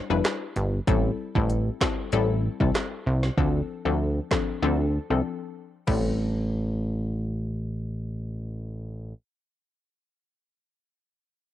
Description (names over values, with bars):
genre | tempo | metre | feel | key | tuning
dancehall | 96 BPM | 4/4 | straight | A minor | A4 = 440 Hz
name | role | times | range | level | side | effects
analog pluck | accompaniment | 0.0-9.8 s | F3 to B4 | -29 LUFS | left 8 dB | chorus, low-pass filter, cassette tape
plucky analog bass | bass | 0.1-9.1 s | F1 to D2 | -25 LUFS | right 1 dB | none
afro-pop drum kit | drums | 0.2-6.0 s | crash cymbal, handclaps, hi-hat, kick drum, rim click, snare drum | -27 LUFS | right 1 dB | cassette tape
room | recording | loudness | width
little or no reverb | home recording on cassette | -24 LUFS | side -12 dB against mid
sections
0.9-5.9 A section; 5.9-8.4 B section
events
break 0.0-0.9, 5.2-5.9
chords
0.0 Em7; 0.9 Am7; 3.4 Dm7; 5.9 Am7